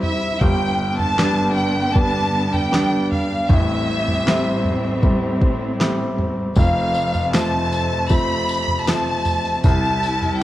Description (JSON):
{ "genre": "pop ballad", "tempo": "78 BPM", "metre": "4/4", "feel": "straight", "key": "F lydian", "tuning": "A4 = 437 Hz", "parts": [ { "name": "clear studio violin section", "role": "melody", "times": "0.0-10.4 s", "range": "E5 to B5", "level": "-22 LUFS", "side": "equal", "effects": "tape echo" }, { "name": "clear baby grand piano", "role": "accompaniment", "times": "0.0-10.4 s", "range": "F1 to E4", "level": "-22 LUFS", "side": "equal", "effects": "none" }, { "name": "warm studio string section", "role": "sustained chords", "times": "0.0-10.4 s", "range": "F2 to E4", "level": "-25 LUFS", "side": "equal", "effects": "none" }, { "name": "smooth R&B drum kit", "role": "drums", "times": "0.0-10.4 s", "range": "kick drum, snare drum, toms", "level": "-20 LUFS", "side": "equal", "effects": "none" }, { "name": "tambourine", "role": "percussion", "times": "6.6-10.4 s", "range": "none", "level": "-38 LUFS", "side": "left 6 dB", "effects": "none" } ], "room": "studio reverb", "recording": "worn, warbling old tape, cassette tape, warbly pitch drift", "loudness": "-17 LUFS", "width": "side -14 dB against mid", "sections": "0.0-10.4 A section", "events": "none", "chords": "0.4 G; 3.5 Am7; 6.6 F; 9.6 C" }